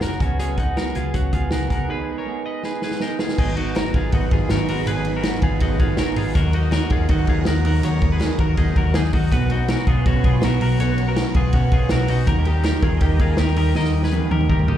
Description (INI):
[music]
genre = jangly indie pop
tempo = 162 BPM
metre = 4/4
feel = straight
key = unclear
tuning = A4 = 440 Hz
[part]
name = electric guitar through a small old amp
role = accompaniment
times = 0.0-14.8 s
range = Ab2 to Bb4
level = -25 LUFS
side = right 6 dB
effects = spring reverb, slapback echo
[part]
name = twelve-string electric guitar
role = arpeggios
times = 0.0-14.8 s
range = Db4 to Eb5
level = -27 LUFS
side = left 4 dB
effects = digital delay, slapback echo
[part]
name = vintage muted picked electric bass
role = bass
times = 0.0-14.8 s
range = Gb1 to Eb2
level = -21 LUFS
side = left 1 dB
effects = none
[part]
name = vintage drum kit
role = drums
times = 0.0-14.8 s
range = crash cymbal, hi-hat, kick drum, ride cymbal, snare drum, toms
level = -22 LUFS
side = equal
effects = none
[part]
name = phased string machine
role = sustained chords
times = 3.4-14.8 s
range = Ab4 to Eb6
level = -33 LUFS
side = equal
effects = ensemble chorus, phaser
[part]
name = group handclap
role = percussion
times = 3.8-14.2 s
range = none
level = -42 LUFS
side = left 2 dB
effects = none
[sound]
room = small room ambience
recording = live gig heard through the venue's PA, club reverb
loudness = -17 LUFS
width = side -11 dB against mid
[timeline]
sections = 0.0-3.4 A section; 3.4-14.8 B section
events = break 1.9-3.4; drum fill 2.6-3.4, 13.8-14.8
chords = 0.2 Db7sus4; 1.9 Abm; 3.4 Abm7; 6.3 Ebm; 9.3 Bsus2; 12.3 Eb